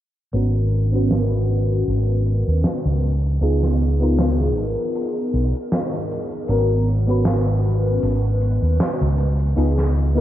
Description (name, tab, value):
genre	vaporwave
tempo	78 BPM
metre	4/4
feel	swing 55% on 16ths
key	G# dorian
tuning	A4 = 443 Hz
part	FM electric piano with soft pad layer	accompaniment	0.3-10.2 s	B3 to B4	-23 LUFS	left 1 dB	phaser, lush chorus, cassette tape, tape echo
part	mellow fretless electric bass	bass	0.3-10.2 s	G#1 to D#2	-18 LUFS	equal	none
part	huge arena drum kit	drums	0.3-10.2 s	hi-hat, snare drum	-27 LUFS	equal	gated reverb
room	light reverb, small room ambience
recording	cassette tape, low-pass filter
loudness	-17 LUFS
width	side -12 dB against mid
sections	0.3-10.2 A section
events	filter sweep 0.3-10.2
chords	0.3 G#m11; 3.0 C#9; 6.5 G#m11; 9.2 C#9